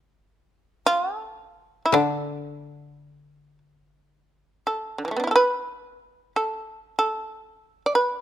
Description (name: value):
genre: japanese traditional, Japanese chamber music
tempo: free time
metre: none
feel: none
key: unclear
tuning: A4 = 439 Hz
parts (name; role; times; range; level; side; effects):
- koto; accompaniment; 0.0-5.1 s; D3; -26 LUFS; left 7 dB; none
- shamisen; melody; 0.9-8.2 s; D3 to D5; -22 LUFS; right 1 dB; none
room: little or no reverb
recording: close, detailed microphones, faint mains hum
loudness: -22 LUFS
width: side -12 dB against mid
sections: 0.0-3.8 A section; 3.8-8.2 A section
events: none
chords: none